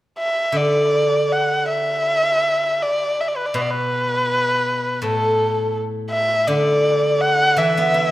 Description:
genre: chinese traditional, Chinese chamber ensemble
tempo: 81 BPM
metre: 4/4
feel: rubato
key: D gong mode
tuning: A4 = 440 Hz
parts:
  - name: warm erhu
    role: melody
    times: 0.2-8.1 s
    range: A4 to F#5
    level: -18 LUFS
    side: equal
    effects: none
  - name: steel-string zither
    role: accompaniment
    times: 0.5-8.1 s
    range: A2 to E4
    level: -21 LUFS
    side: equal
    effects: none
room: light reverb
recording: none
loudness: -17 LUFS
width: side -15 dB against mid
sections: 0.6-8.1 A section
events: none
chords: none

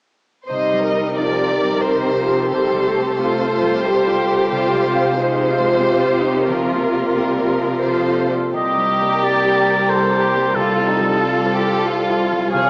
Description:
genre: cinematic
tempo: 90 BPM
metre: 3/4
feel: rubato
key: C dorian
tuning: A4 = 440 Hz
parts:
  - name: rich studio violin section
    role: second line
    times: 0.5-12.7 s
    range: Eb4 to Eb5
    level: -23 LUFS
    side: equal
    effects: none
  - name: warm studio viola section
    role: accompaniment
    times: 0.5-12.7 s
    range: Eb3 to Db5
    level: -23 LUFS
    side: equal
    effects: none
  - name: concert harp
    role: arpeggios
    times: 0.5-12.7 s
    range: C3 to F5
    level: -26 LUFS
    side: equal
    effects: none
  - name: warm studio cello section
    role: bass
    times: 0.5-12.7 s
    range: C2 to C3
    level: -27 LUFS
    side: equal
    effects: none
  - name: warm studio violin section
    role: melody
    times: 8.6-12.7 s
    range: Ab4 to Bb4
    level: -28 LUFS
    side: equal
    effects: none
  - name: warm oboe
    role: second line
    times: 8.6-12.7 s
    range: A4 to F5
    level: -21 LUFS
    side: equal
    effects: none
room: wet scoring stage reverb, RT60 2.1 s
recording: small speaker sound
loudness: -18 LUFS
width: mono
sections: 0.5-8.5 A section; 8.5-12.7 B section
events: none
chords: 0.5 Cm7; 2.5 Fadd9/C; 4.5 Db/C (rootless); 6.5 Bb/C; 8.5 Cm7; 10.6 Fadd9/C

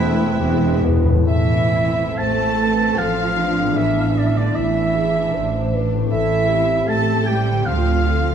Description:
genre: classical, slow romantic movement for symphony orchestra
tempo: 64-79 BPM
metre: 3/4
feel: rubato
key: A minor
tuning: A4 = 440 Hz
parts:
  - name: warm symphonic violin section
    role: melody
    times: 0.0-8.3 s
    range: C4 to E5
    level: -32 LUFS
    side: left 5 dB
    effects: none
  - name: clear symphonic violin section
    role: second line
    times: 0.0-8.3 s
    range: E4 to A5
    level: -29 LUFS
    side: left 1 dB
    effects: none
  - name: hollow small flute group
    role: second line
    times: 0.0-0.8 s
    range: E4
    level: -34 LUFS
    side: left 1 dB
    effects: none
  - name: warm clarinet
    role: second line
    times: 0.0-0.8 s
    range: E4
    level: -33 LUFS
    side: left 1 dB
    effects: none
  - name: warm oboe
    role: second line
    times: 0.0-8.3 s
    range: B4 to A5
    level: -22 LUFS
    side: right 2 dB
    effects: none
  - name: mellow bassoon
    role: accompaniment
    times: 0.0-1.3 s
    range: B3 to C4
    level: -28 LUFS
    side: right 4 dB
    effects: none
  - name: warm symphonic viola section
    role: accompaniment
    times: 0.0-8.3 s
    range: G#3 to A4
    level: -28 LUFS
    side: right 1 dB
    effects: none
  - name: dark French horn section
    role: sustained chords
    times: 0.0-8.3 s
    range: E3 to C5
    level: -25 LUFS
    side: left 2 dB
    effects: none
  - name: concert harp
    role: arpeggios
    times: 0.0-8.3 s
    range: A2 to A5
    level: -26 LUFS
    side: left 8 dB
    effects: none
  - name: mellow tuba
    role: bass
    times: 0.0-1.0 s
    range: E1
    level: -27 LUFS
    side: right 3 dB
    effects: none
  - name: rich symphonic cello section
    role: bass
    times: 0.0-8.3 s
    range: E2 to A3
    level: -24 LUFS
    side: right 6 dB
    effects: none
  - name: rich symphonic double bass section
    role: bass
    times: 0.0-8.3 s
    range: E1 to D2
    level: -22 LUFS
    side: right 3 dB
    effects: none
  - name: timpani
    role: percussion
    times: 0.4-1.2 s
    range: E2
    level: -20 LUFS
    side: left 1 dB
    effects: none
room: wet concert hall reverb, RT60 2.3 s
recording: dark, warm production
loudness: -16 LUFS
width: side -8 dB against mid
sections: 0.0-1.3 A section; 1.3-8.3 B section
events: timpani fill 0.4-1.3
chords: 0.4 E; 1.3 Am; 3.8 E7/A; 6.1 Am; 7.7 Dm7

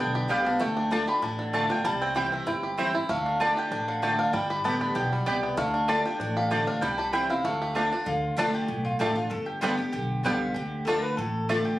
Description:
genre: bluegrass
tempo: 193 BPM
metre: 4/4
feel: straight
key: D dorian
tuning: A4 = 445 Hz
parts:
  - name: bluegrass banjo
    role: melody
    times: 0.0-11.6 s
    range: D3 to G4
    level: -29 LUFS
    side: right 1 dB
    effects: slapback echo
  - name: mandolin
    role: melody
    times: 0.0-11.8 s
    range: D4 to B5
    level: -30 LUFS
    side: equal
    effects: none
  - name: picked steel-string acoustic guitar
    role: accompaniment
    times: 0.0-11.8 s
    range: G2 to G4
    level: -31 LUFS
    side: left 1 dB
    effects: none
  - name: upright bass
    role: bass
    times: 0.0-11.6 s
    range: G1 to D2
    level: -34 LUFS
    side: equal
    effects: none
  - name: mandolin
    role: stabs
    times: 0.3-11.6 s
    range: A3 to A5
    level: -28 LUFS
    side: right 1 dB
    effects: none
room: moderate studio reverb, RT60 0.8 s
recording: recorded on a phone in the room, studio ambience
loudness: -24 LUFS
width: side -15 dB against mid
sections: 0.0-8.1 A section; 8.1-11.8 A section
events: none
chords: 0.0 G; 0.6 Dm; 1.8 C; 3.1 Dm; 4.3 G; 5.6 Dm; 6.8 C; 7.4 Dm; 9.3 G; 10.6 Dm

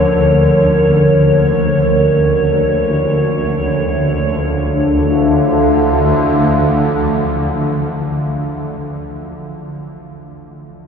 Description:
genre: dark ambient drone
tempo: free time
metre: none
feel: none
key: D harmonic minor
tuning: A4 = 439 Hz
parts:
  - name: dark analog pad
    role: sustained chords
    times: 0.0-8.6 s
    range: F3 to F5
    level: -15 LUFS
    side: equal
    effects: wide subtle chorus
  - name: carillon bells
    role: arpeggios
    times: 0.0-8.1 s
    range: A2 to F4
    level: -33 LUFS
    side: left 1 dB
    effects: none
  - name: swarming drone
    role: drone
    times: 0.0-8.1 s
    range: D2 to D3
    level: -16 LUFS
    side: equal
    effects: built-in reverb
  - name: icy glass pad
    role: texture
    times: 0.0-4.4 s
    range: C#5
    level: -25 LUFS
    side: equal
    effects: chorus, built-in reverb
room: wet huge ambient reverb, RT60 7.9 s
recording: dark, warm production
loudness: -12 LUFS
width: side -6 dB against mid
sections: 0.0-4.4 A section; 4.4-8.2 B section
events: none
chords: 0.0 Bbm; 4.4 Dm

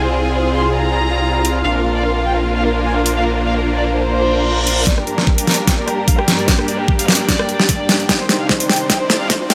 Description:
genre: heavy wobble dubstep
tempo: 149 BPM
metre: 4/4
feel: swing 54% on 16ths, half-time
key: G phrygian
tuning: A4 = 440 Hz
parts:
  - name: warm studio violin section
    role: melody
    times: 0.0-9.5 s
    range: G4 to C6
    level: -24 LUFS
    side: equal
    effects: low-pass filter, digital delay
  - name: supersaw chords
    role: sustained chords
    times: 0.0-9.5 s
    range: G2 to Ab4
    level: -25 LUFS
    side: equal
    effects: sidechain pumping
  - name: formant-sweep wobble bass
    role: bass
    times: 0.0-4.9 s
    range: Bb1 to C2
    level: -21 LUFS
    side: equal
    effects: chorus, overdrive
  - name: dark studio string section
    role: texture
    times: 0.0-9.5 s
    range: Eb3 to G5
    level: -25 LUFS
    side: equal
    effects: sidechain pumping
  - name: dubstep drum kit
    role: drums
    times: 1.4-9.5 s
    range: hi-hat, rim click, snare drum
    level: -18 LUFS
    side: equal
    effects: overdrive, studio reverb
  - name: reverse cymbal and riser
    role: sound effects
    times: 4.2-9.5 s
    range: none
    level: -28 LUFS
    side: equal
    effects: none
  - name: electronic kick drum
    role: drums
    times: 4.9-9.4 s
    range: none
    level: -20 LUFS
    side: equal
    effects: overdrive, studio reverb
room: light reverb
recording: high-pass filter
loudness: -16 LUFS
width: mono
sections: 0.0-4.9 A section; 4.9-9.5 B section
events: reverse cymbal 4.2-4.9; build-up 4.9-9.5; drum fill 4.9-9.5; filter sweep on violin section 4.9-9.5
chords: 0.0 Fm/C; 1.6 Bb; 4.9 Gm; 8.1 Cmadd9

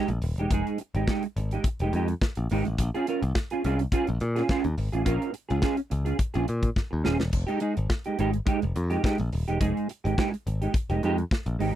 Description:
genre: disco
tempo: 106 BPM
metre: 4/4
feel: straight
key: F minor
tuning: A4 = 439 Hz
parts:
  - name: semi-hollow electric guitar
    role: accompaniment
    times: 0.0-11.8 s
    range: Ab3 to Bb4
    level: -27 LUFS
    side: right 3 dB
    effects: ensemble chorus
  - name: modern bright picked electric bass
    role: bass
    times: 0.1-11.7 s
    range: Eb1 to Bb2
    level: -27 LUFS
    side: left 1 dB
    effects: none
  - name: modern studio drum kit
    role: drums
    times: 0.1-11.7 s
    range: hi-hat, kick drum, snare drum, splash cymbal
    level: -27 LUFS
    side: left 1 dB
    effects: none
room: little or no reverb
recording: dry, close 1970s-style studio recording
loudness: -24 LUFS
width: side -12 dB against mid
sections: 0.0-11.8 A section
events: drum fill 6.8-7.3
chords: 0.0 Fm9; 2.8 Bbm7; 7.3 Fm9

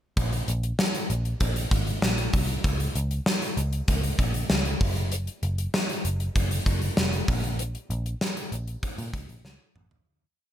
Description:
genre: 1980s-style pop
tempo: 97 BPM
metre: 4/4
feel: straight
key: Bb minor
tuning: A4 = 439 Hz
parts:
  - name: vintage muted picked electric bass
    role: bass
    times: 0.2-10.0 s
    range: F1 to Bb2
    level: -27 LUFS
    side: equal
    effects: none
  - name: gated 80s drum kit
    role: drums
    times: 0.2-10.1 s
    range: hi-hat, kick drum, snare drum, toms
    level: -26 LUFS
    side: equal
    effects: gated reverb
room: little or no reverb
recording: none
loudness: -24 LUFS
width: side -11 dB against mid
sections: 0.2-10.1 chorus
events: fade-out 7.6-10.1; drum fill 9.4-10.1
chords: none

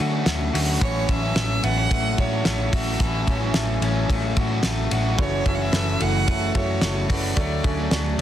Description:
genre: jangly indie pop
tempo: 110 BPM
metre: 4/4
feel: straight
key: unclear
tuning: A4 = 445 Hz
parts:
  - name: raw garage guitar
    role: accompaniment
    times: 0.0-8.2 s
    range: F#2 to E4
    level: -29 LUFS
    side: right 5 dB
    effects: overdrive
  - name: electric guitar through a small old amp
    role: arpeggios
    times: 0.0-8.2 s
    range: E3 to F#4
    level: -27 LUFS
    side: left 5 dB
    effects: tape echo
  - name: vintage muted picked electric bass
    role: bass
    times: 0.0-8.2 s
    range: F#1 to D3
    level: -25 LUFS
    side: equal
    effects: none
  - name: cloth-damped thuddy drum kit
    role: drums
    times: 0.0-8.2 s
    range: hi-hat, kick drum, ride cymbal, snare drum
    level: -25 LUFS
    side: equal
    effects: none
  - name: rich violin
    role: melody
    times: 0.8-8.2 s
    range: C#5 to F#5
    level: -28 LUFS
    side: right 2 dB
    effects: none
  - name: warm upright piano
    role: accompaniment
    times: 5.2-8.2 s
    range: D4 to E5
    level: -30 LUFS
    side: right 4 dB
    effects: none
room: studio reverb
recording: dense, heavily limited modern master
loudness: -20 LUFS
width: side -11 dB against mid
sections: 0.0-8.2 A section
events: none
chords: 0.0 Dmaj7; 0.8 A6; 5.2 F#m7; 7.4 Dmaj7

